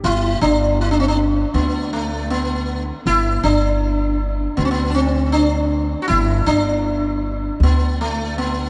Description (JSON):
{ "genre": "Turkish makam ensemble", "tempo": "79 BPM", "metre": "4/4", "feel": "straight", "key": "G makam rast", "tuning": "A4 = 440 Hz", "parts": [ { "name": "sitar", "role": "melody", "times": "0.0-8.7 s", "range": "A3 to F#4", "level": "-21 LUFS", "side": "equal", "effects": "none" }, { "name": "upright bass", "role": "bass", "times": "0.0-8.7 s", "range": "G1 to D2", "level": "-22 LUFS", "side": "equal", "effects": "none" } ], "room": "wet cathedral reverb, RT60 6.0 s", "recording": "in a vast, echoing space, nothing above 10.9 kHz", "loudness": "-19 LUFS", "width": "mono", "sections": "0.0-8.7 A section", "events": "none", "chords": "none" }